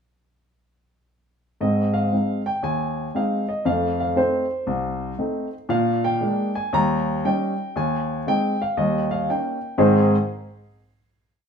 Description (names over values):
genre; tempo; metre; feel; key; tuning
jazz, stride piano; 118 BPM; 4/4; swing 65% on 8ths; Ab major; A4 = 440 Hz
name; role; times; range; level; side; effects
warm grand piano; solo; 1.6-10.2 s; C2 to Bb5; -20 LUFS; equal; none
room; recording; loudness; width
wet stone room reverb, RT60 1.0 s; band playing live in one room; -20 LUFS; side -6 dB against mid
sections
1.6-9.8 A section; 9.8-11.5 final chord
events
none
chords
1.6 Ab; 3.7 F7; 5.7 Bb7; 6.7 Eb7; 7.7 Ab/Eb; 8.8 Eb7; 9.8 Ab